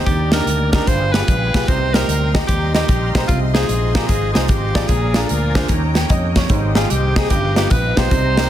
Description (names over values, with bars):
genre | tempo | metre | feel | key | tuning
uptempo gospel | 149 BPM | 4/4 | swing 66% on 8ths | Eb major | A4 = 438 Hz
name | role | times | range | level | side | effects
clear baby grand piano | accompaniment | 0.0-8.5 s | G2 to G5 | -23 LUFS | equal | none
fingered electric bass | bass | 0.0-8.5 s | G1 to F2 | -20 LUFS | equal | none
edgy alto saxophone | melody | 0.1-8.5 s | F4 to C5 | -22 LUFS | equal | none
clear studio string section | sustained chords | 0.1-8.5 s | Bb4 to C6 | -30 LUFS | left 4 dB | none
percussive tonewheel organ | sustained chords | 0.1-8.5 s | Eb3 to Bb4 | -28 LUFS | right 3 dB | slow rotary speaker, overdrive, chorus vibrato
modern studio drum kit | drums | 0.1-8.4 s | hi-hat, kick drum, snare drum | -18 LUFS | equal | none
room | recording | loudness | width
light reverb | dense, heavily limited modern master | -14 LUFS | side -11 dB against mid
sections
0.0-8.5 A section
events
none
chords
0.1 Ebmaj7; 0.9 G7b9; 1.7 Cm7; 3.3 Fm7; 4.9 Bb7; 5.7 Eb7; 6.5 Abmaj7; 7.3 G7b13